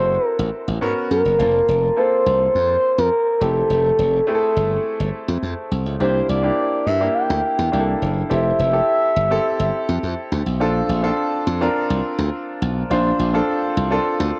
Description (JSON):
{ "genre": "polished 1980s jazz-funk pop", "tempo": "104 BPM", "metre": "4/4", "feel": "straight", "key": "F major", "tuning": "A4 = 439 Hz", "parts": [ { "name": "expressive synth lead", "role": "melody", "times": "0.0-10.0 s", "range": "A4 to G5", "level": "-21 LUFS", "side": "equal", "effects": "chorus, cassette tape" }, { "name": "clear concert grand piano", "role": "accompaniment", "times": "0.0-14.4 s", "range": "A3 to A5", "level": "-25 LUFS", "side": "equal", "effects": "subtle chorus, cassette tape" }, { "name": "glassy slap bass", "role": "bass", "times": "0.0-14.3 s", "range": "F1 to Ab2", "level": "-24 LUFS", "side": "equal", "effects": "none" } ], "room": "moderate lush hall reverb, RT60 2.7 s", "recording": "home recording on cassette", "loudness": "-19 LUFS", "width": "mono", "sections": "0.0-6.0 A section; 6.0-14.4 B section", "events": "none", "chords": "0.0 D9 (rootless); 0.8 Abm11; 1.4 Fadd11; 3.4 Fmaj9; 6.0 C9; 7.7 C13; 8.3 Fmaj9; 10.6 Bbmaj7", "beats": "0.24 0.82 | 1.40 1.97 2.55 3.12 | 3.70 4.28 4.85 5.43 | 6.00 6.58 7.15 7.73 | 8.30 8.88 9.45 10.03 | 10.60 11.18 11.75 12.33 | 12.90 13.48 14.06" }